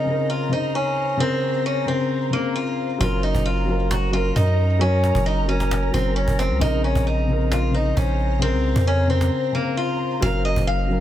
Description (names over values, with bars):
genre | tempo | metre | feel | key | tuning
hip hop, trap | 133 BPM | 4/4 | half-time | Bb minor | A4 = 439 Hz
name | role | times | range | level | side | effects
picked acoustic archtop guitar | melody | 0.0-11.0 s | Bb3 to F5 | -24 LUFS | equal | low-pass filter
dark concert grand piano | accompaniment | 0.0-11.0 s | Db3 to C5 | -24 LUFS | left 2 dB | low-pass filter
ethereal airy pad | sustained chords | 0.0-11.0 s | Gb3 to Bb5 | -31 LUFS | left 2 dB | ensemble chorus, built-in reverb, phaser
long sustained 808-style bass | bass | 3.0-11.0 s | Gb1 to Gb2 | -21 LUFS | right 1 dB | none
cajon | drums | 3.0-11.0 s | none | -27 LUFS | equal | none
room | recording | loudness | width
studio reverb | none | -19 LUFS | side -12 dB against mid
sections
0.0-10.2 A section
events
break 9.3-10.2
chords
0.0 Bbmadd9; 3.0 Gb; 6.6 Bbmadd9; 10.2 Gb